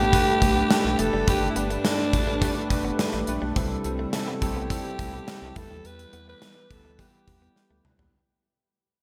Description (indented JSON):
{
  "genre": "1980s-style pop",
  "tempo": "105 BPM",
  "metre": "4/4",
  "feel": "straight",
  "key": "unclear",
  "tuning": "A4 = 440 Hz",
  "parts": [
    { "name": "raspy alto saxophone", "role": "melody", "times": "0.0-7.9 s", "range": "D4 to B4", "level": "-30 LUFS", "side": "equal", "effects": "none" },
    { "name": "bell-like tine electric piano", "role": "accompaniment", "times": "0.0-8.2 s", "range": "G2 to B4", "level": "-31 LUFS", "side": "equal", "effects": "analog chorus" },
    { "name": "lush unison pad", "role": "sustained chords", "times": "0.1-8.1 s", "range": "E3 to B4", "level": "-40 LUFS", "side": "equal", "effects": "none" },
    { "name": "direct-recorded clean electric guitar", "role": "riff", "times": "0.0-8.1 s", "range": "G3 to C4", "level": "-39 LUFS", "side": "equal", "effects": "none" },
    { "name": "rubbery square bass", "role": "bass", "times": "0.0-8.1 s", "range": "F1 to E2", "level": "-35 LUFS", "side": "equal", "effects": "none" },
    { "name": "gated 80s drum kit", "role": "drums", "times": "0.1-8.1 s", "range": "hi-hat, kick drum, snare drum, toms", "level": "-29 LUFS", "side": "equal", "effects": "gated reverb" }
  ],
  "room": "wet lush hall reverb, RT60 3.1 s",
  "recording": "bright 1980s-style digital production",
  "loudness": "-24 LUFS",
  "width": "mono",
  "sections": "0.0-8.1 A section",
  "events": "fade-out 0.0-8.1; drum fill 7.6-8.1",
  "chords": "0.0 Gadd9; 3.6 C6; 5.6 Em",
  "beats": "0.13 0.70 | 1.28 1.85 2.42 2.99 | 3.56 4.13 4.70 5.28 | 5.85 6.42 6.99 7.56"
}